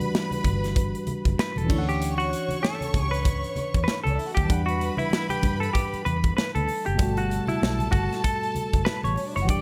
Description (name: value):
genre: lush 1970s-style soul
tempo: 96 BPM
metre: 4/4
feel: swing 58% on 16ths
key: unclear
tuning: A4 = 440 Hz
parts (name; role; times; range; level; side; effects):
- clear studio string section; second line; 0.0-9.6 s; C#4 to C#6; -35 LUFS; equal; none
- mellow tine electric piano; accompaniment; 0.0-9.6 s; B2 to F#5; -34 LUFS; equal; none
- vintage muted fingered electric bass; bass; 0.0-9.6 s; E1 to G2; -30 LUFS; equal; none
- modern studio drum kit; drums; 0.0-9.6 s; crash cymbal, hi-hat, kick drum, snare drum; -29 LUFS; equal; none
- congas; percussion; 0.1-9.6 s; none; -36 LUFS; equal; none
- semi-hollow electric guitar; melody; 1.4-9.6 s; E4 to D5; -31 LUFS; equal; subtle chorus, slapback echo
room: studio ambience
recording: none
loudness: -25 LUFS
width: mono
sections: 0.0-9.6 A section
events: none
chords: 0.0 Em9; 1.7 Dmaj9; 4.5 Em9; 7.0 Gmaj9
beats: 0.14 0.76 1.38 | 2.01 2.63 3.25 3.88 | 4.50 5.12 5.75 6.37 | 7.00 7.62 8.24 8.87 | 9.49